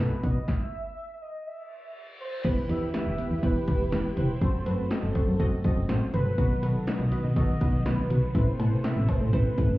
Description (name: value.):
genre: synth-pop.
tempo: 122 BPM.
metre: 4/4.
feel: straight.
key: E harmonic minor.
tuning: A4 = 440 Hz.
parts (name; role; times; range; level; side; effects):
warm velvety synth lead; melody; 0.0-9.8 s; A4 to E5; -35 LUFS; right 1 dB; chorus.
funky polysynth comp; accompaniment; 0.0-9.7 s; B3 to D#5; -33 LUFS; equal; chorus.
string machine, violins; sustained chords; 0.0-9.8 s; B2 to B4; -32 LUFS; equal; ensemble chorus.
solid FM bass; bass; 0.0-9.8 s; E1 to B2; -27 LUFS; equal; none.
punchy analog drum machine; drums; 0.2-9.7 s; cowbell, crash cymbal, hi-hat, kick drum, snare drum, toms; -28 LUFS; equal; none.
reverse cymbal and impact; sound effects; 1.7-4.4 s; none; -43 LUFS; equal; none.
room: light reverb.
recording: heard muffled through a wall, club reverb, EQ.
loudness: -24 LUFS.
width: side -18 dB against mid.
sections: 0.0-2.4 A section; 2.4-9.8 B section.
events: stop 0.5-2.4; reverse cymbal 1.7-2.4; impact 2.4-4.4.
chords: 0.5 N.C.; 2.4 Em; 4.4 F#dim; 6.4 B; 8.3 Amadd9.